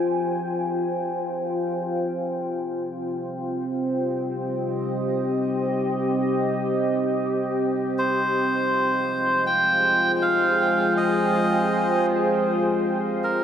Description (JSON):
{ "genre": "ambient", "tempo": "free time", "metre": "none", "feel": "none", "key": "F minor", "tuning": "A4 = 440 Hz", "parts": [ { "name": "deep dark ambient pad", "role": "sustained chords", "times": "0.0-13.4 s", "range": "C4 to Ab5", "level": "-23 LUFS", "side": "equal", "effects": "chorus, built-in reverb" }, { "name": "melodica", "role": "melody", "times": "8.0-13.4 s", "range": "Bb4 to G5", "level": "-22 LUFS", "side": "equal", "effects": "dub echo" } ], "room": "wet recital hall reverb, RT60 1.9 s, studio ambience", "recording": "dark, warm production", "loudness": "-21 LUFS", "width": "side -9 dB against mid", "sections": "0.0-13.4 A section", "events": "fade-out 12.0-13.4", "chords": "0.0 Fmadd9; 2.0 Cm; 8.0 Fm9" }